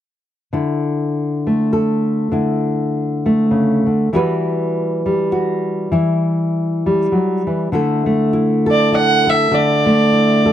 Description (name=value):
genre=folk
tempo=100 BPM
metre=3/4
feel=swing 57% on 8ths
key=D major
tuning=A4 = 441 Hz
part: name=nylon-string guitar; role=accompaniment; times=0.5-10.5 s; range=C#3 to B4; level=-15 LUFS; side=left 1 dB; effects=none
part: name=warm fiddle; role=melody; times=8.7-10.5 s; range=D5 to F#5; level=-14 LUFS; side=right 3 dB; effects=none
room=light reverb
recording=dry, close 1970s-style studio recording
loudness=-14 LUFS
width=side -11 dB against mid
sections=0.5-7.7 A section; 7.7-10.5 B section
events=none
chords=0.5 Dsus2; 4.1 Emadd9; 7.7 Dsus2